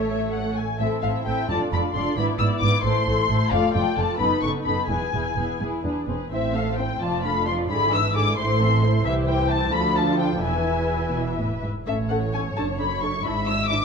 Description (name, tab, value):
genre	quick classical-period movement for string orchestra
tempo	87 BPM (dotted quarters)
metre	6/8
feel	rubato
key	A minor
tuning	A4 = 440 Hz
part	muted symphonic violin section	melody	0.0-13.8 s	E5 to E6	-25 LUFS	left 4 dB	none
part	muted symphonic violin section	second line	0.0-13.8 s	E4 to F5	-30 LUFS	left 3 dB	none
part	muted symphonic viola section	accompaniment	0.0-13.8 s	D3 to A4	-27 LUFS	right 1 dB	none
part	muted symphonic cello section	bass	0.0-13.8 s	C2 to A3	-28 LUFS	right 2 dB	none
part	muted symphonic double bass section	bass	0.0-13.8 s	E1 to D2	-28 LUFS	right 3 dB	none
room	wet recital hall reverb, RT60 1.3 s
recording	dark, warm production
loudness	-20 LUFS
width	side -5 dB against mid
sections	0.8-11.9 A section; 11.9-13.8 A section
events	none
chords	0.0 A; 0.8 Am; 1.5 Dm/F; 2.2 E7/G#; 2.8 Am; 3.5 Dm/F; 4.2 B7/F#; 4.9 E; 6.3 Am; 7.0 Dm/F; 7.7 E7/G#; 8.4 Am; 9.1 C; 9.7 Dm; 10.4 E; 11.9 A; 12.6 D/F#; 13.2 E7/G#